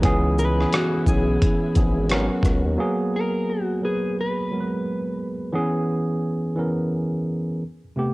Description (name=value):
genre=lo-fi hip hop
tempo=87 BPM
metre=4/4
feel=swing 61% on 16ths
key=G# minor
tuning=A4 = 440 Hz
part: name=tine electric piano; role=accompaniment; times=0.0-8.1 s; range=C3 to B4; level=-23 LUFS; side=right 1 dB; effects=cassette tape, low-pass filter
part: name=warm studio string section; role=sustained chords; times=0.0-2.8 s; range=C#3 to F#4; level=-36 LUFS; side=left 3 dB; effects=low-pass filter
part: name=smooth synth bass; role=bass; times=0.0-2.8 s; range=G#1 to D#2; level=-24 LUFS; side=equal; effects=none
part: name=dusty soul sampler-style drum kit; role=drums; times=0.0-2.6 s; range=hi-hat, kick drum, rim click, shaker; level=-22 LUFS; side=equal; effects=cassette tape
part: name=mellow electric guitar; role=melody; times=0.4-5.2 s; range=F#4 to B4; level=-28 LUFS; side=left 2 dB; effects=low-pass filter, cassette tape, analog delay
room=digital ambience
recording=home recording on cassette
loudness=-20 LUFS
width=side -21 dB against mid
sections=0.0-2.8 A section; 2.8-8.1 B section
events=none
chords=0.0 C#m7; 2.1 G#m11; 2.8 G#m9; 5.5 C#m7; 7.6 Am9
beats=| 0.03 0.72 1.41 2.10 | 2.79 3.48 4.17 4.86 | 5.55 6.24 6.93 7.62